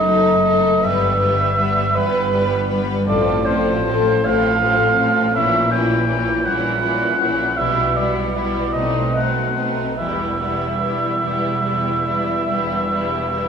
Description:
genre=classical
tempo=47-55 BPM (dotted quarters)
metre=12/8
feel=rubato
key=E minor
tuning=A4 = 445 Hz
part: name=rich chamber violin section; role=melody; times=0.0-13.5 s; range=D#4 to B4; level=-24 LUFS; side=left 8 dB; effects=none
part: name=mellow cor anglais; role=second line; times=0.0-13.5 s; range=B4 to G5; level=-19 LUFS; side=right 3 dB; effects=none
part: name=rich chamber violin section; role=second line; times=0.0-13.5 s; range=B3 to D#4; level=-28 LUFS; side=left 3 dB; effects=none
part: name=rich chamber viola section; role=accompaniment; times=0.0-13.5 s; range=E3 to A3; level=-27 LUFS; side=left 1 dB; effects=none
part: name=concert harp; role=arpeggios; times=0.0-13.5 s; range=F#2 to C5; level=-27 LUFS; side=left 4 dB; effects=none
part: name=clear chamber double bass section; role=bass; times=0.0-13.5 s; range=E1 to B1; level=-26 LUFS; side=right 2 dB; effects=none
part: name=rich studio cello section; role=bass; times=0.0-13.5 s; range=E2 to B2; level=-27 LUFS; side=right 2 dB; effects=none
room=wet recital hall reverb, RT60 1.7 s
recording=recorded in a church or concert hall, nothing above 10.6 kHz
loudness=-16 LUFS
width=side -7 dB against mid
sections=0.0-13.5 A section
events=none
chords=0.0 D#dim/F#; 0.8 Em/G; 3.1 F/A; 5.4 A#dim7; 7.6 Em/B; 8.8 B7b9; 10.0 Em

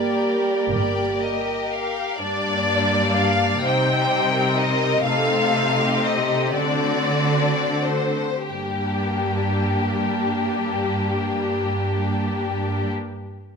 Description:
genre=classical, slow romantic movement for symphony orchestra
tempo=29-42 BPM (dotted quarters)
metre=6/8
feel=rubato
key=G minor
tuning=A4 = 440 Hz
part: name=rich symphonic violin section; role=melody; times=0.0-12.9 s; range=G4 to G5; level=-24 LUFS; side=left 3 dB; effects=none
part: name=warm symphonic violin section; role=second line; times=0.0-12.9 s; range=D4 to D5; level=-25 LUFS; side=left 3 dB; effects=none
part: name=dark bassoon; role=accompaniment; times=0.0-1.7 s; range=G3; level=-24 LUFS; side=right 4 dB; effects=none
part: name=rich studio viola section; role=accompaniment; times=0.0-12.9 s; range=G3 to C4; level=-26 LUFS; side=left 1 dB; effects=none
part: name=rich symphonic cello section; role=bass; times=0.0-12.9 s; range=G2 to D3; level=-25 LUFS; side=right 2 dB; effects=none
part: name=warm symphonic double bass section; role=bass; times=0.0-2.0 s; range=G1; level=-30 LUFS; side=right 3 dB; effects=none
room=moderate recital hall reverb, RT60 1.6 s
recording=close, detailed microphones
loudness=-19 LUFS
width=side -5 dB against mid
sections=0.0-2.2 A section; 2.2-8.5 B section; 8.5-12.2 C section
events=slowing down 0.7-8.5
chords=0.0 Gm; 3.6 Cm; 5.1 Adim/C; 6.6 D7; 8.5 Gm

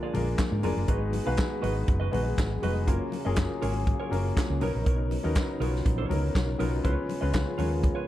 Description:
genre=disco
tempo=121 BPM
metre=4/4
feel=straight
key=F# major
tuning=A4 = 440 Hz
part: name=mellow electric guitar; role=accompaniment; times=0.0-8.1 s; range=D#4 to E#5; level=-38 LUFS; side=right 7 dB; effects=spring reverb
part: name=warm grand piano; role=accompaniment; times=0.0-8.1 s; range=F#3 to B4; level=-32 LUFS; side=left 4 dB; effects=none
part: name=mellow tonewheel organ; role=sustained chords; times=0.0-8.1 s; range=C#3 to A#4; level=-35 LUFS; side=right 2 dB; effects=chorus vibrato, slow rotary speaker
part: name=hollow-body short-scale fingered electric bass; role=bass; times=0.1-7.9 s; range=E#1 to G#2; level=-29 LUFS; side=equal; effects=none
part: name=vintage drum kit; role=drums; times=0.1-8.0 s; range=handclaps, hi-hat, kick drum, snare drum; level=-29 LUFS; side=equal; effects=none
part: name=congas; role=percussion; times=0.1-8.0 s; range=none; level=-38 LUFS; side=left 6 dB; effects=none
room=small room ambience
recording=dark, warm production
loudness=-25 LUFS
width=side -14 dB against mid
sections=0.0-8.1 A section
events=none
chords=0.0 A#7; 0.9 G#m7; 2.9 F#maj7; 4.6 Bmaj9; 6.8 C#7

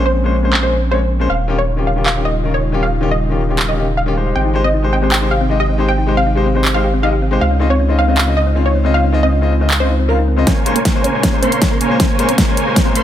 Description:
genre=future bass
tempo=157 BPM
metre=4/4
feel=half-time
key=unclear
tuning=A4 = 441 Hz
part: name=clear grand piano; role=accompaniment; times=0.0-13.0 s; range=Bb2 to F5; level=-20 LUFS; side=left 4 dB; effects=sidechain pumping, ping-pong delay
part: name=airy breathy pad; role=sustained chords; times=0.0-13.0 s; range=C3 to Ab4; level=-24 LUFS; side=right 1 dB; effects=chorus, sidechain pumping
part: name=saturated sub bass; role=bass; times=0.0-10.5 s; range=Eb1 to Db2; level=-16 LUFS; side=equal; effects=sidechain pumping
part: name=wide unison pluck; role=melody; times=0.1-13.0 s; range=Bb3 to G5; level=-20 LUFS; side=right 1 dB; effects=sidechain pumping, ping-pong delay
part: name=big-room dance drum kit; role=drums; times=0.5-13.0 s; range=handclaps, hi-hat, snare drum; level=-18 LUFS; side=equal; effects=low-pass filter on hats, low-pass filter on snare, low-pass filter on toms
part: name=thumb-piano-like synth pluck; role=arpeggios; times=4.4-10.4 s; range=C4 to G4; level=-22 LUFS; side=left 3 dB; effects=chorus, sidechain pumping, ping-pong delay
part: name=dense compressed supersaw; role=riff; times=10.5-13.0 s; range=Bb3 to C6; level=-17 LUFS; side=right 1 dB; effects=sidechain pumping, low-pass filter
part: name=electronic kick drum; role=drums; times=10.5-12.8 s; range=none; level=-17 LUFS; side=equal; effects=none
room=light reverb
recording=none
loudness=-12 LUFS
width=side -11 dB against mid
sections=0.0-10.5 A section; 10.5-13.0 B section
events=build-up 10.5-13.0; drum fill 10.5-13.0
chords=0.0 Bbm9; 1.3 Eb9; 4.4 Abmaj7; 7.4 Dbmaj9; 10.5 Bbm9

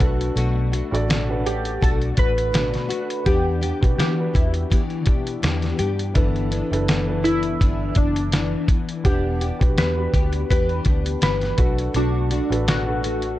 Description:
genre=indie pop, bedroom pop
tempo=83 BPM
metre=4/4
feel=swing 55% on 16ths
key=E minor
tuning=A4 = 439 Hz
part: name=dark upright piano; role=accompaniment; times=0.0-13.4 s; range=C#4 to F#5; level=-30 LUFS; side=right 3 dB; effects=cassette tape
part: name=nylon-string guitar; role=accompaniment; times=0.0-13.4 s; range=G2 to G4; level=-27 LUFS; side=left 4 dB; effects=ensemble chorus, warbly pitch drift
part: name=vintage muted fingered electric bass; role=bass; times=0.0-13.4 s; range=E1 to E3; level=-24 LUFS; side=equal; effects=none
part: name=dusty soul sampler-style drum kit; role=drums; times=0.0-13.4 s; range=hi-hat, kick drum, snare drum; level=-20 LUFS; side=equal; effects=vintage 12-bit sampler grit
part: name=warbly lo-fi synth keys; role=melody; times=1.5-13.4 s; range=D4 to B4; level=-26 LUFS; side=equal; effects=analog chorus, tape echo
room=little or no reverb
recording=none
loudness=-18 LUFS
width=side -15 dB against mid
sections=0.0-13.4 A section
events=none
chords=0.0 Bm7; 3.3 Em7; 6.2 G6; 9.0 Em7; 11.6 Bm7

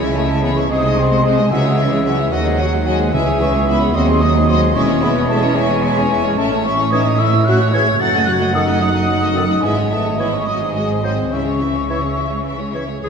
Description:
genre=quick classical-period movement for symphony orchestra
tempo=74 BPM (dotted quarters)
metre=6/8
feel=straight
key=C# minor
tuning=A4 = 440 Hz
part: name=rich studio violin section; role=melody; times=0.0-13.1 s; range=B#4 to F#5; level=-27 LUFS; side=left 3 dB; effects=none
part: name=clear clarinet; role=second line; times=0.0-13.1 s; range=E4 to C#5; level=-29 LUFS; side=left 3 dB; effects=none
part: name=rich studio violin section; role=second line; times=0.0-13.0 s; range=C#4 to B#4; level=-30 LUFS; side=left 5 dB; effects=none
part: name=mellow bassoon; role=accompaniment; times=0.0-12.8 s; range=D#3 to G#3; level=-27 LUFS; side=equal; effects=none
part: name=rich studio viola section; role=accompaniment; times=0.0-13.1 s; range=E3 to G#4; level=-25 LUFS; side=equal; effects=none
part: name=rich studio cello section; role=bass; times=0.0-13.1 s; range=C#2 to C#3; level=-21 LUFS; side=right 3 dB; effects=none
part: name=warm studio double bass section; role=bass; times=0.0-13.1 s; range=E1 to D#2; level=-21 LUFS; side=right 3 dB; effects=none
part: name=mellow flute section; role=second line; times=0.2-12.7 s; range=D#5 to A6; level=-22 LUFS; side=left 1 dB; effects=none
part: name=warm French horn section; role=sustained chords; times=0.2-12.8 s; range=D#3 to A4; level=-22 LUFS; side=left 4 dB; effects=none
part: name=mellow cor anglais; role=second line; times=0.7-12.6 s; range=C#5 to F#5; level=-24 LUFS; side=right 2 dB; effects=none
part: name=timpani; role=percussion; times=1.5-3.9 s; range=C#3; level=-29 LUFS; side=left 1 dB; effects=none
room=wet concert hall reverb, RT60 2.5 s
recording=none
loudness=-14 LUFS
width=side -6 dB against mid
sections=0.0-13.0 A section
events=none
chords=0.0 C#m; 0.7 G#/B#; 1.5 C#m; 2.3 G#7/D#; 3.1 C#m; 3.9 G#7/D#; 4.8 C#m/E; 6.4 A; 8.0 D#dim/F#; 9.6 C#m/G#; 10.5 G#7; 11.3 C#m

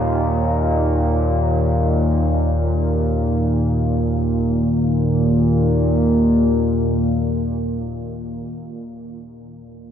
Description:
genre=ambient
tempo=free time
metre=none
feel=none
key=unclear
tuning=A4 = 438 Hz
part: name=analog drone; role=solo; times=0.0-8.8 s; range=Eb2 to Bb2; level=-17 LUFS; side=equal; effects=chorus, tape echo
room=wet huge ambient reverb, RT60 7.4 s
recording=dark, warm production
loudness=-16 LUFS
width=side -8 dB against mid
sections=0.0-4.7 A section; 4.7-8.5 B section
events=none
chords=0.0 Eb5

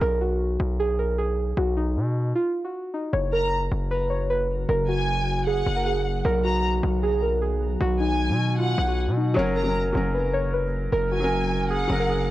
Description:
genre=hip hop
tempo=154 BPM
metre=4/4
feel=half-time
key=F# major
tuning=A4 = 438 Hz
part: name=muted felt-like synth keys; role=melody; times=0.0-12.3 s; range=D#4 to C#5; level=-26 LUFS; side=right 1 dB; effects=chorus
part: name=felt-muted upright piano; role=accompaniment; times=0.0, 9.3-12.3 s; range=F#3 to A#4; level=-27 LUFS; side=equal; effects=none
part: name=distorted 808-style bass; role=bass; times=0.0-12.3 s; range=F#1 to B2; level=-25 LUFS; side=equal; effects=distortion
part: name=glassy FM pad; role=sustained chords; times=3.9-12.3 s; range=C#3 to A#4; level=-32 LUFS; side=right 1 dB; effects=ensemble chorus, built-in reverb
part: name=warm studio violin section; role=second line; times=3.3-12.3 s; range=F#5 to A#5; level=-30 LUFS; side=equal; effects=analog delay
room=small room ambience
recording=dry, gritty hardware recording, cassette tape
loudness=-22 LUFS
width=side -15 dB against mid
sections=0.0-3.1 A section; 3.1-12.3 B section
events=break 0.0-3.1; stop 2.4-3.1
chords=0.0 B; 3.1 F#; 6.2 B; 9.4 F#

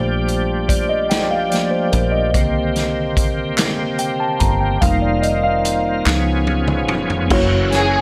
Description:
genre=slow gospel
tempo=48 BPM (dotted quarters)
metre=6/8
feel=straight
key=unclear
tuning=A4 = 439 Hz
part: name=mellow tine electric piano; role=accompaniment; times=0.0-8.0 s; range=D3 to Bb5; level=-22 LUFS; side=equal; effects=none
part: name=bright tonewheel organ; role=sustained chords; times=0.0-8.0 s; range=C3 to Ab4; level=-25 LUFS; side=equal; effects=slow rotary speaker, overdrive, chorus vibrato
part: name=fingered electric bass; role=bass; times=0.0-8.0 s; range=F1 to Db2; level=-24 LUFS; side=equal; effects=none
part: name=swinging big-band drum kit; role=drums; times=0.3-7.9 s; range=crash cymbal, hi-hat, kick drum, snare drum, toms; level=-23 LUFS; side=equal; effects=none
part: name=group handclap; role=percussion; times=3.6-6.4 s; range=none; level=-25 LUFS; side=equal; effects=none
part: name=dark symphonic string section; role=melody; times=7.7-8.0 s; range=G#4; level=-18 LUFS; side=equal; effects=none
room=light reverb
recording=none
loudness=-18 LUFS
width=mono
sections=0.0-7.3 A section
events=tine electric piano solo 0.0-7.3; drum fill 6.1-7.3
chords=0.0 Gm7/Bb; 2.3 Cm7; 4.8 F7sus4; 6.1 Db7; 7.3 F#7

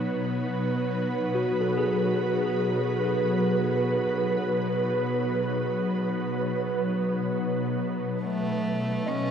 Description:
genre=ambient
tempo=70 BPM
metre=4/4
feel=straight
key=B mixolydian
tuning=A4 = 438 Hz
part: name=ethereal airy pad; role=sustained chords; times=0.0-9.3 s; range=B2 to A5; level=-26 LUFS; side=equal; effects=ensemble chorus, built-in reverb, shimmer reverb
part: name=tine electric piano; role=arpeggios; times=0.0-9.3 s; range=D#4 to D#5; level=-30 LUFS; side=left 1 dB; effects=medium stereo tremolo, shimmer reverb, diffuse ambient delay
part: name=organ-like drone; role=drone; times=0.0-8.3 s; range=B3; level=-34 LUFS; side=right 2 dB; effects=ensemble chorus, built-in reverb
part: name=warm cello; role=melody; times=8.2-9.3 s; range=A3 to C#4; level=-29 LUFS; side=equal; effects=none
room=wet huge ambient reverb, RT60 7.5 s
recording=dreamy mix soaked in reverb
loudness=-24 LUFS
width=side -8 dB against mid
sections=0.0-8.2 A section; 8.2-9.3 B section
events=none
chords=0.0 B7

